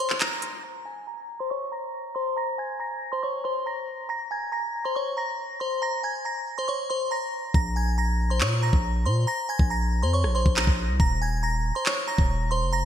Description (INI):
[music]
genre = hip hop, drill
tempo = 139 BPM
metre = 4/4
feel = half-time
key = Bb minor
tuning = A4 = 440 Hz
[part]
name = glassy synth bell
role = melody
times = 0.0-12.8 s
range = C5 to Bb6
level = -27 LUFS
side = equal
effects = chorus, low-pass filter, digital delay
[part]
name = drill drum kit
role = drums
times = 0.1-0.5, 7.5-12.3 s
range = handclaps, hi-hat, kick drum, rim click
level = -24 LUFS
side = equal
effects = gated reverb
[part]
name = long sustained 808-style bass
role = bass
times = 7.5-12.8 s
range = Eb1 to Bb2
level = -24 LUFS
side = equal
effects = none
[sound]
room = moderate lush hall reverb, RT60 2.1 s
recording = bright 1980s-style digital production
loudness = -24 LUFS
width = side -10 dB against mid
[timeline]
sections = 0.6-7.5 A section; 7.5-12.8 B section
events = break 0.0-0.6; filter sweep on synth bell 0.6-7.5; hi-hats muted 7.5-12.8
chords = 0.0 N.C.; 0.6 Bbm9/C; 7.5 Bbm; 11.0 Eb5